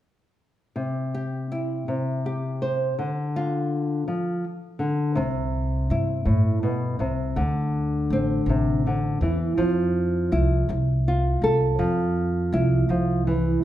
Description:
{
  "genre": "folk",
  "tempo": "54 BPM (dotted quarters)",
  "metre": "6/8",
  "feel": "straight",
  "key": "C major",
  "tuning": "A4 = 441 Hz",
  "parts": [
    { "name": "nylon-string guitar", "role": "accompaniment", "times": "0.8-13.6 s", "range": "A2 to C5", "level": "-23 LUFS", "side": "equal", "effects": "none" },
    { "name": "upright bass", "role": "bass", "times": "5.2-13.6 s", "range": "A1 to G2", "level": "-24 LUFS", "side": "equal", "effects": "none" }
  ],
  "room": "wet large studio reverb, RT60 1.2 s",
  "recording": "band playing live in one room",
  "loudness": "-22 LUFS",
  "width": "side -12 dB against mid",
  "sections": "0.8-5.2 A section; 5.2-13.6 B section",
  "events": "none",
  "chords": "0.8 C; 3.0 Dm; 5.2 C; 7.4 D5; 9.6 Fmaj7"
}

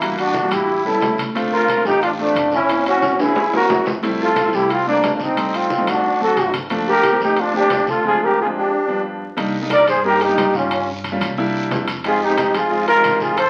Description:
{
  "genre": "Afro-Cuban jazz",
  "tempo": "180 BPM",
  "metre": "4/4",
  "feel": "straight",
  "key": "G minor, C minor from 9.4 s",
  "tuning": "A4 = 441 Hz",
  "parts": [
    { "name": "breathy trumpet", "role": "melody", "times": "0.0-13.5 s", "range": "D4 to D5", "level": "-20 LUFS", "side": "equal", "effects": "none" },
    { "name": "musette accordion", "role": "second line", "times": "0.0-13.5 s", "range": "A3 to Bb4", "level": "-24 LUFS", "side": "equal", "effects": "none" },
    { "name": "clear grand piano", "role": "accompaniment", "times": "0.0-13.4 s", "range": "F3 to G4", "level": "-26 LUFS", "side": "equal", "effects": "none" },
    { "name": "upright bass", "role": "bass", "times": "0.0-13.5 s", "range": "F#1 to G2", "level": "-35 LUFS", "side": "equal", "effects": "none" },
    { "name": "congas", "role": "percussion", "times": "0.0-13.5 s", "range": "none", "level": "-36 LUFS", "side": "equal", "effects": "none" },
    { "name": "guiro", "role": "percussion", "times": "0.0-13.5 s", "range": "none", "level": "-38 LUFS", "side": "equal", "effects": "none" },
    { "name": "timbales", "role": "percussion", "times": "0.0-13.5 s", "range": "none", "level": "-28 LUFS", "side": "equal", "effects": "none" }
  ],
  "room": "moderate large studio reverb, RT60 1.1 s",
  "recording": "very old 78 rpm record, vinyl crackle",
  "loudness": "-18 LUFS",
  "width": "mono",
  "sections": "0.0-9.4 A section; 9.4-13.5 B section",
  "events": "drum fill 3.2-4.0; break 8.0-9.4",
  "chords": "0.0 Em7b5; 0.7 A7; 1.4 Dm7; 2.7 F#7#11; 4.0 Fmaj7; 5.4 Am7b5; 6.0 D7; 6.7 Gm7; 8.0 Dm7b5; 8.7 G7; 9.4 Cm7; 10.7 Gm7b5; 11.4 C7; 12.0 Fm7"
}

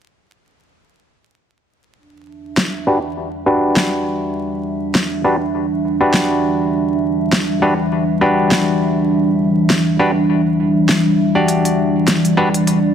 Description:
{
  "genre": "glitch hop",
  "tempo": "101 BPM",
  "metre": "4/4",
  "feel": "swing 56% on 16ths",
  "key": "E minor",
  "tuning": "A4 = 440 Hz",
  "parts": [
    { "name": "dark analog pad", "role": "sustained chords", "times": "2.9-12.9 s", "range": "E3 to B5", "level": "-20 LUFS", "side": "left 2 dB", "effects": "chorus" },
    { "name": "warbly tape-like pad", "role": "texture", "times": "2.4-12.9 s", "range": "G3 to E5", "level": "-19 LUFS", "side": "right 1 dB", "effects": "chorus, built-in reverb" },
    { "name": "pop drum kit", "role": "drums", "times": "2.6-12.8 s", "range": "hi-hat, snare drum", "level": "-17 LUFS", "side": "equal", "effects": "small room ambience" },
    { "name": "mellow clav", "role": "stabs", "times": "2.9-12.5 s", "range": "D4 to D5", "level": "-18 LUFS", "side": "equal", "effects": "low-pass filter, ping-pong delay" }
  ],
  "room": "moderate plate reverb, RT60 1.9 s, digital ambience",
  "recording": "dense, heavily limited modern master, vinyl crackle",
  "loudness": "-14 LUFS",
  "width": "side -8 dB against mid",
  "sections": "2.0-12.9 A section",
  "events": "filter sweep on clav 2.0-12.9; filter sweep on analog synth pad 2.0-12.9",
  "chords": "2.0 Em7"
}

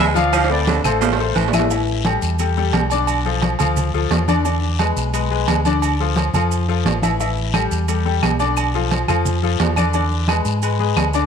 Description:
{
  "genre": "latin, salsa",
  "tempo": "175 BPM",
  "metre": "4/4",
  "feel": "straight",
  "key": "A minor",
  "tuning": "A4 = 440 Hz",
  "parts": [
    { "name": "dark trumpet section", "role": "melody", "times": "0.0-1.2 s", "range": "F4 to F5", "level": "-23 LUFS", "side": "equal", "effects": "none" },
    { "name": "raspy baritone saxophone", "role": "second line", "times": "0.0-1.5 s", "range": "D3 to G#3", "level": "-24 LUFS", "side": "right 10 dB", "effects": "none" },
    { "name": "clear concert grand piano", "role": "accompaniment", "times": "0.0-11.3 s", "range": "D3 to F5", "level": "-21 LUFS", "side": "left 11 dB", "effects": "none" },
    { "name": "fingered electric bass", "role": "bass", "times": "0.0-11.3 s", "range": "A1 to G#2", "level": "-21 LUFS", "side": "right 1 dB", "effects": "none" },
    { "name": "agogo bells and timbales", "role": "percussion", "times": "0.2-11.3 s", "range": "none", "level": "-23 LUFS", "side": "right 12 dB", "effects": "none" },
    { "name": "congas", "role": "percussion", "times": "0.2-11.1 s", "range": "none", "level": "-24 LUFS", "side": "left 1 dB", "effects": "none" },
    { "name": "guiro", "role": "percussion", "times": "0.2-11.3 s", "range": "none", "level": "-32 LUFS", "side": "left 12 dB", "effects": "none" },
    { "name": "maracas", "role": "percussion", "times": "0.2-11.3 s", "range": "none", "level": "-35 LUFS", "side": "right 15 dB", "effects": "none" },
    { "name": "claves", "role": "percussion", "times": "0.3-1.7, 7.5-11.1 s", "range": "none", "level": "-31 LUFS", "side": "left 12 dB", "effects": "none" }
  ],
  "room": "moderate echo chamber reverb, RT60 1.9 s, studio reverb",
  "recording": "1960s-style stereo with parts hard left and right",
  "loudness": "-16 LUFS",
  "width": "side -7 dB against mid",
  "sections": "0.0-1.7 A section; 1.7-11.3 B section",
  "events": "drum fill 0.3-1.7",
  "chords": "0.3 Dm7; 1.7 A5; 3.1 Bm7b5; 4.5 E7; 5.8 Dm; 7.2 A5; 8.6 Bm7b5; 9.9 E7"
}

